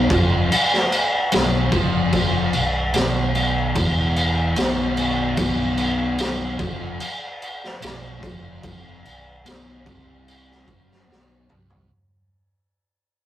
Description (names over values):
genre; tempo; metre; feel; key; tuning
stoner and doom metal; 74 BPM; 4/4; straight; unclear; A4 = 440 Hz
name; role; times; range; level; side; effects
fuzz guitar; riff; 0.0-11.9 s; B1 to F#3; -23 LUFS; left 1 dB; distortion
fingered electric bass; bass; 0.0-11.9 s; B0 to F#1; -27 LUFS; equal; overdrive
raw garage drum kit; drums; 0.1-11.9 s; crash cymbal, kick drum, snare drum, toms; -21 LUFS; equal; none
room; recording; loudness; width
moderate small room reverb, RT60 0.5 s; rough rehearsal-room recording, tube saturation; -18 LUFS; side -12 dB against mid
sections
0.0-11.9 A section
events
fade-out 0.0-11.9; drum fill 11.1-11.9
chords
0.0 B5